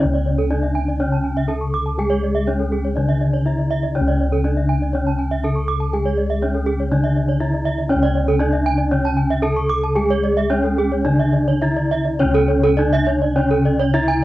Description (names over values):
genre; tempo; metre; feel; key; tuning
Balinese gamelan; 103-122 BPM; 4/4; straight; C# pelog; A4 = 440 Hz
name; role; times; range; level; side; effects
gamelan-type bronze metallophone; melody; 0.0-14.2 s; C#4 to A4-20c; -22 LUFS; right 1 dB; none
gamelan-type bronze metallophone; accompaniment; 0.0-14.2 s; C#3 to G#3-30c; -25 LUFS; left 1 dB; cassette tape
gamelan-type bronze metallophone; arpeggios; 0.0-14.1 s; A4-20c to C#6; -26 LUFS; left 4 dB; cassette tape
gamelan-type bossed gongs; bass; 0.0-14.2 s; C#2 to G#4-30c; -20 LUFS; left 1 dB; none
gamelan-type bronze metallophone; arpeggios; 0.1-14.2 s; G#4-30c to D6+20c; -23 LUFS; right 5 dB; cassette tape
room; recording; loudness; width
little or no reverb; home recording on cassette; -16 LUFS; side -16 dB against mid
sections
0.0-12.2 A section; 12.2-14.2 B section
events
none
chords
none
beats
| 0.01 0.50 0.99 1.49 | 1.98 2.47 2.97 3.46 | 3.95 4.45 4.94 5.43 | 5.93 6.42 6.92 7.41 | 7.90 8.40 8.91 9.43 | 9.96 10.50 11.05 11.61 | 12.19 12.77 13.35 13.94